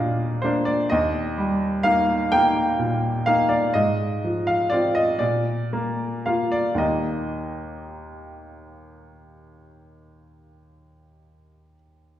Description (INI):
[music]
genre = classical, romantic nocturne for solo piano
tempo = 35-44 BPM (dotted quarters)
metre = 12/8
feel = rubato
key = Eb major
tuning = A4 = 440 Hz
[part]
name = clear baby grand piano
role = solo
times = 0.0-12.2 s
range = Eb2 to G5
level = -20 LUFS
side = equal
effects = none
[sound]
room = wet recital hall reverb, RT60 1.5 s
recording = heard from further back in the room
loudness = -20 LUFS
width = side -12 dB against mid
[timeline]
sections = 0.0-12.2 A section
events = none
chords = 0.0 Bb/Eb; 0.9 Eb; 3.7 Fm/Ab; 5.2 Bb; 6.8 Eb